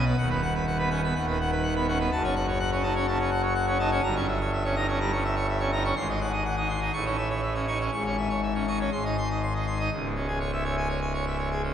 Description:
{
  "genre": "classical, organ toccata",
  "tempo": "124 BPM",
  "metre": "4/4",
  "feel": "straight",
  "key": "C# minor",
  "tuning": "A4 = 441 Hz",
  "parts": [
    { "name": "pipe organ, full organ", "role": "solo", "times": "0.0-11.7 s", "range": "C#1 to C#6", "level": "-24 LUFS", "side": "equal", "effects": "none" }
  ],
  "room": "wet church reverb, RT60 2.7 s",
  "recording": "recorded in a church or concert hall",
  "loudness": "-24 LUFS",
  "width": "side -9 dB against mid",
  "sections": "0.0-9.9 A section; 9.9-11.7 B section",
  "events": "none",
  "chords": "0.2 B/D#; 2.1 F#m; 4.0 Gdim7; 6.0 G#7; 6.9 A; 7.9 C#m/G#; 8.9 G#; 9.9 C#m",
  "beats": "| 0.18 0.66 1.15 1.63 | 2.11 2.60 3.07 3.55 | 4.03 4.52 5.00 5.48 | 5.96 6.44 6.93 7.42 | 7.92 8.42 8.92 9.42 | 9.91 10.40 10.89 11.38"
}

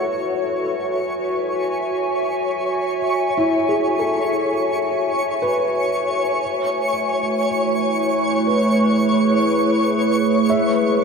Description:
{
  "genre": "ambient",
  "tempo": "59 BPM",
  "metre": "4/4",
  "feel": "straight",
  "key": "F# minor",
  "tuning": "A4 = 440 Hz",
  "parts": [
    { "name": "warbly tape-like pad", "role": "sustained chords", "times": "0.0-11.0 s", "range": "G#3 to G#5", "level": "-19 LUFS", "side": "right 1 dB", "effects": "chorus, built-in reverb" },
    { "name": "felt-muted upright piano", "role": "arpeggios", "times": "0.0-11.0 s", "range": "E4 to E5", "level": "-26 LUFS", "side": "left 1 dB", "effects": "ping-pong delay" },
    { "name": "twinkling granular texture", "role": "texture", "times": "0.0-11.0 s", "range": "C#5 to C#6", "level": "-23 LUFS", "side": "equal", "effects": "built-in reverb" }
  ],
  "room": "wet huge ambient reverb, RT60 7.3 s",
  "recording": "dreamy mix soaked in reverb",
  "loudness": "-17 LUFS",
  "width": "side -5 dB against mid",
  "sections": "0.0-11.0 A section",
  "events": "none",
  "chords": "0.0 F#m9; 6.4 Amaj7; 10.5 E6/G#",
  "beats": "0.26 1.29 | 2.32 3.35 4.38 5.39 | 6.42 7.44 8.46 9.48 | 10.50"
}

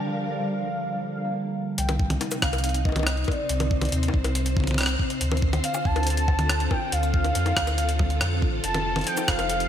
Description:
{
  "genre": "IDM",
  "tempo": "140 BPM",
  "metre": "4/4",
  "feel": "straight",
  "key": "C dorian",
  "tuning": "A4 = 440 Hz",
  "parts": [
    { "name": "warm velvety synth lead", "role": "melody", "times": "0.0-9.7 s", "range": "D5 to A5", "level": "-29 LUFS", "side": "equal", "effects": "chorus, cassette tape, ping-pong delay" },
    { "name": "soft string machine", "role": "sustained chords", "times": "0.0-9.7 s", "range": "C3 to F5", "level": "-31 LUFS", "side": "equal", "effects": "ensemble chorus, vintage 12-bit sampler grit" },
    { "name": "concert harp", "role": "arpeggios", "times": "0.0-4.5, 8.7-9.7 s", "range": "D3 to C5", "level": "-32 LUFS", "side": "right 1 dB", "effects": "digital delay" },
    { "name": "warm sub bass", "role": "bass", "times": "1.8-9.7 s", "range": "F1 to F2", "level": "-26 LUFS", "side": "equal", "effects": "none" },
    { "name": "jungle sampler-style drum kit", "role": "drums", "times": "1.8-9.7 s", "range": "bongos, cabasa, hi-hat, rim click, toms", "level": "-28 LUFS", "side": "left 1 dB", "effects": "small room reverb" },
    { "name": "electronic kick drum", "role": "drums", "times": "2.0-9.4 s", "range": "none", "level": "-26 LUFS", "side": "equal", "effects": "small room reverb" }
  ],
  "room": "moderate lush hall reverb, RT60 2.0 s, digital ambience",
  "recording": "bright 1980s-style digital production",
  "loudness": "-22 LUFS",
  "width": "side -10 dB against mid",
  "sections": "0.0-1.8 A section; 1.8-9.7 B section",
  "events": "filter sweep 0.0-1.8",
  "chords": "0.0 Gm9; 1.8 Cmadd9; 5.2 Dm7; 8.6 F7",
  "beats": "| 0.07 0.49 0.92 1.35 | 1.78 2.21 2.64 3.07 | 3.50 3.92 4.35 4.78 | 5.21 5.64 6.07 6.50 | 6.92 7.35 7.78 8.21 | 8.64 9.07 9.49"
}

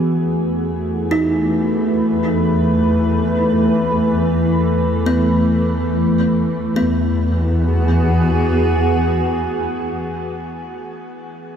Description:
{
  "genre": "ambient",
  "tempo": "53 BPM",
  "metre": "3/4",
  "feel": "straight",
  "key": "E major",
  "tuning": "A4 = 442 Hz",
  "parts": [
    { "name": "evolving wavetable pad", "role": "sustained chords", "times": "0.0-10.5 s", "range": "E3 to B4", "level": "-17 LUFS", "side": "equal", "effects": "chorus, built-in reverb, shimmer reverb" },
    { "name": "dark chamber double bass section", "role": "bass", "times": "0.0-10.0 s", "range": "E2", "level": "-21 LUFS", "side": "equal", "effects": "none" },
    { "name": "kalimba", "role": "arpeggios", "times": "1.1-10.0 s", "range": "B3 to D#4", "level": "-24 LUFS", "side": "right 1 dB", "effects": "diffuse ambient delay" }
  ],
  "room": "wet huge ambient reverb, RT60 8.0 s",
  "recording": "dark, warm production",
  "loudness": "-15 LUFS",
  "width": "side -8 dB against mid",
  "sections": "0.0-6.8 A section; 6.8-10.2 B section",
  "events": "filter sweep on ambient pad 0.0-6.8",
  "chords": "0.0 Asus2/E; 6.8 Eadd9",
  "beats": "1.11 2.25 | 3.38 4.51 5.64 | 6.77 7.91 9.04"
}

